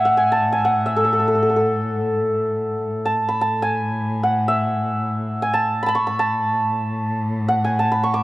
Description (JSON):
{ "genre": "Persian modal ensemble", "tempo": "free time", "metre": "none", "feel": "none", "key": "A dastgah mahur", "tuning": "A4 = 440 Hz", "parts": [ { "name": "santur", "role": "melody", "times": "0.0-8.2 s", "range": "A4 to D6", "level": "-19 LUFS", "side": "equal", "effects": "none" }, { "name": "dark cello", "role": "drone", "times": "0.0-8.2 s", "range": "A2", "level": "-25 LUFS", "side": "left 1 dB", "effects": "none" } ], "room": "small room reverb", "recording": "dry, close 1970s-style studio recording", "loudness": "-18 LUFS", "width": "side -17 dB against mid", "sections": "0.0-2.9 A section; 2.9-8.2 A section", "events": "none", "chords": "none", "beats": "free time" }